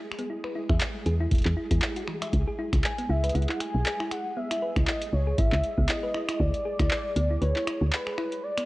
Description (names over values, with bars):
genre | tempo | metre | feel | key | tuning
IDM | 118 BPM | 4/4 | swing 56% on 16ths | unclear | A4 = 440 Hz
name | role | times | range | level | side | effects
flickering grainy texture | texture | 0.0-8.7 s | G#3 to G#4 | -40 LUFS | right 1 dB | built-in reverb, cassette tape
booming analog drum machine | drums | 0.1-8.7 s | finger snaps, handclaps, hi-hat | -32 LUFS | equal | cassette tape
thumb-piano-like synth pluck | arpeggios | 0.2-8.7 s | E3 to E5 | -34 LUFS | left 1 dB | chorus, cassette tape, analog delay
woody FM bass | bass | 0.7-7.9 s | E1 to E2 | -25 LUFS | equal | none
electronic kick drum | drums | 0.7-6.9 s | none | -27 LUFS | equal | cassette tape
warm velvety synth lead | melody | 2.8-8.7 s | B4 to G#5 | -31 LUFS | equal | chorus, cassette tape, analog delay
room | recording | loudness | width
light reverb, digital ambience | home recording on cassette | -24 LUFS | side -19 dB against mid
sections
0.0-8.7 A section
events
none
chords
0.0 E; 2.3 C#m7; 6.4 Bm/D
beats
| 0.30 0.81 1.31 1.82 | 2.33 2.84 3.35 3.86 | 4.37 4.87 5.38 5.89 | 6.40 6.91 7.42 7.92 | 8.43